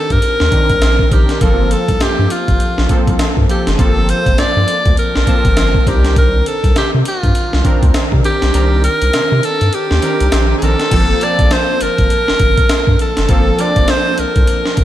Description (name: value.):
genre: R&B, new jack swing.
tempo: 101 BPM.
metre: 4/4.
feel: swing 60% on 16ths.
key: G minor.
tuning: A4 = 440 Hz.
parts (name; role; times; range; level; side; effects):
bright alto saxophone; melody; 0.0-14.8 s; F4 to D5; -16 LUFS; equal; slapback echo, ping-pong delay.
warm analog keys; accompaniment; 0.0-14.8 s; Eb3 to A5; -20 LUFS; right 1 dB; chorus, slapback echo.
round analog bass; bass; 0.1-14.8 s; F#1 to C3; -15 LUFS; equal; none.
breakbeat sampler-style drum kit; drums; 0.1-14.8 s; crash cymbal, hi-hat, kick drum, snare drum; -15 LUFS; equal; none.
room: light reverb.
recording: none.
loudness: -11 LUFS.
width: side -13 dB against mid.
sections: 0.0-10.9 A section; 10.9-14.8 B section.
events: kick muted 8.5-10.9.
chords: 0.0 Cm9; 1.4 Gm11; 5.9 Cm9; 10.9 Gm11.